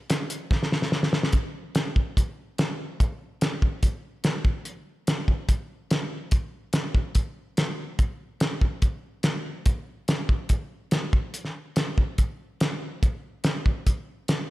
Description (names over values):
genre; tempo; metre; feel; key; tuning
rock; 144 BPM; 4/4; straight; none; none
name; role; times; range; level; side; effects
cloth-damped thuddy drum kit; drums; 0.1-14.4 s; hi-hat, kick drum, snare drum; -23 LUFS; equal; none
room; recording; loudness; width
light reverb; none; -24 LUFS; side -18 dB against mid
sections
0.0-1.3 A section; 1.3-14.5 B section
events
drum fill 0.5-1.3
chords
none